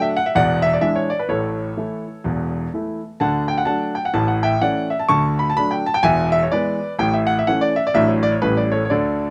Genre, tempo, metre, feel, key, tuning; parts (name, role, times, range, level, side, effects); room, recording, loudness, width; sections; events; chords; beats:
jazz, stride piano; 127 BPM; 4/4; swing 61% on 8ths; A4 = 440 Hz
clear concert grand piano; solo; 0.0-9.3 s; E1 to C#6; -20 LUFS; equal; slapback echo
little or no reverb; recorded outdoors, with no room sound; -19 LUFS; mono
0.0-9.3 A section
0.4 E7; 1.3 A; 3.2 D; 4.1 A; 5.1 D; 6.0 E7; 7.0 A; 7.9 D/A; 8.4 A7
0.36 0.83 | 1.31 1.78 2.25 2.73 | 3.20 3.67 4.15 4.62 | 5.09 5.57 6.04 6.51 | 6.99 7.46 7.93 8.41 | 8.88